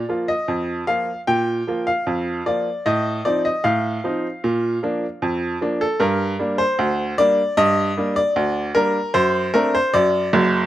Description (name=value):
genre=ragtime piano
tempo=76 BPM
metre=2/4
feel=straight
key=Bb major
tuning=A4 = 440 Hz
part: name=bright upright piano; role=solo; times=0.0-10.7 s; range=F#1 to G5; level=-18 LUFS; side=equal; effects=slapback echo
room=little or no reverb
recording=recorded outdoors, with no room sound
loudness=-18 LUFS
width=side -13 dB against mid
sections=0.0-10.7 A section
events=none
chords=0.0 Bb5; 2.9 F7/A; 4.4 Bb; 6.0 Gm; 9.2 D7/F#